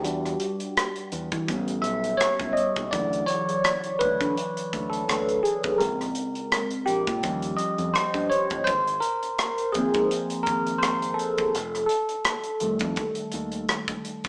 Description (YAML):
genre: lush 1970s-style soul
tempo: 83 BPM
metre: 4/4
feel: swing 54% on 16ths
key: unclear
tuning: A4 = 436 Hz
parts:
  - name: barky tine electric piano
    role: accompaniment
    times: 0.0-14.3 s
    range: C#3 to E5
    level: -27 LUFS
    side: equal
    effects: phaser
  - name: modern bright fingered electric bass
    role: bass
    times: 0.0-13.6 s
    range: F1 to E3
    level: -35 LUFS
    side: equal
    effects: none
  - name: modern studio drum kit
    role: drums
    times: 0.0-14.3 s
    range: hi-hat, kick drum, rim click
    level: -31 LUFS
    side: equal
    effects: none
room: light reverb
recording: band playing live in one room, small speaker sound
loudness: -26 LUFS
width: mono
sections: 0.0-14.3 A section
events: tine electric piano solo 0.0-14.3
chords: 0.0 Em7; 1.5 A7; 2.9 Dmaj7; 5.8 Bbm7; 7.2 Eb7; 8.7 Ab6; 11.6 F7